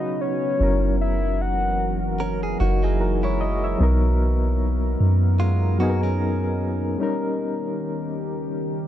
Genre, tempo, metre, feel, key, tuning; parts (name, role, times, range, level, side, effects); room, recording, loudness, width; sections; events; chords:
contemporary R&B; 75 BPM; 4/4; swing 58% on 16ths; A4 = 440 Hz
soft octave-layered synth lead; melody; 0.0-2.2 s; C#5 to F#5; -26 LUFS; left 2 dB; chorus, ping-pong delay
soft electric-piano-like synth keys; accompaniment; 0.0-8.9 s; F#3 to E5; -26 LUFS; left 1 dB; chorus, tremolo
deep dark ambient pad; sustained chords; 0.0-8.9 s; C#3 to A#4; -29 LUFS; left 1 dB; chorus, built-in reverb
soft 808-style bass; bass; 0.6-7.0 s; F#1 to F#2; -21 LUFS; equal
direct-recorded clean electric guitar; arpeggios; 2.2-7.0 s; F#3 to A#4; -30 LUFS; right 3 dB; ping-pong delay
light reverb; dark, warm production; -20 LUFS; side -11 dB against mid
0.0-8.9 A section
break 7.0-8.9
0.0 C#9sus4; 0.6 F#7; 3.8 Bmaj7; 7.0 D#7